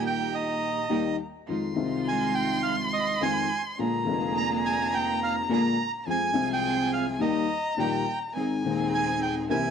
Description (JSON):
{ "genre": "tango", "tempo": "105 BPM", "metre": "4/4", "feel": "rubato", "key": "Ab major", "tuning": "A4 = 440 Hz", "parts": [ { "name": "bandoneon", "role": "melody", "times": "0.0-9.7 s", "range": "Eb5 to Bb5", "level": "-29 LUFS", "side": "right 6 dB", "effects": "none" }, { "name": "warm violin", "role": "second line", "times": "0.0-9.7 s", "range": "E5 to C6", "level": "-32 LUFS", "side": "left 2 dB", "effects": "none" }, { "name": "dark upright piano", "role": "accompaniment", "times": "0.0-9.7 s", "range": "Eb1 to Ab4", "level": "-28 LUFS", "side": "left 6 dB", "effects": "none" }, { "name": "rich studio string section", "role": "stabs", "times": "0.0-9.7 s", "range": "Ab3 to Bb4", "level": "-32 LUFS", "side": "right 9 dB", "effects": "none" } ], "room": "small room ambience", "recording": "dry, close 1970s-style studio recording", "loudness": "-24 LUFS", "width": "side -7 dB against mid", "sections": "0.0-9.7 A section", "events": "none", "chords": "0.0 Eb; 1.5 Fm7; 3.8 Bb7; 6.1 Fm; 7.2 Eb; 8.4 Ab" }